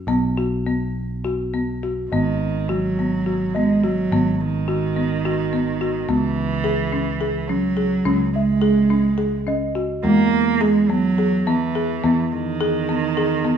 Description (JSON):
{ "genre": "contemporary instrumental, chamber music in an uneven meter", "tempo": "212 BPM (eighths)", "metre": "7/8", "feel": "straight", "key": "unclear", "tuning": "A4 = 440 Hz", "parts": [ { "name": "picked electric bass", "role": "bass", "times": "0.0-13.6 s", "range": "G#1 to E2", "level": "-25 LUFS", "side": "right 1 dB", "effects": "none" }, { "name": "folk marimba with medium mallets", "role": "arpeggios", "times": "0.1-13.6 s", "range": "G#3 to G#4", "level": "-22 LUFS", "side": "left 2 dB", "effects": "none" }, { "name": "dark cello", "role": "second line", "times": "2.1-13.6 s", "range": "D#3 to A#3", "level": "-21 LUFS", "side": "right 5 dB", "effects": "none" }, { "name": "worn celesta", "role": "texture", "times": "2.1-5.2, 8.4-10.3 s", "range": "D#5 to E5", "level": "-30 LUFS", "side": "right 2 dB", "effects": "none" } ], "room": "light reverb", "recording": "studio ambience", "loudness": "-18 LUFS", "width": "side -8 dB against mid", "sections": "0.0-2.1 A section; 2.1-13.6 B section", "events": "none", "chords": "0.1 B5; 2.1 G#m7; 6.1 C#m; 10.0 Emaj7" }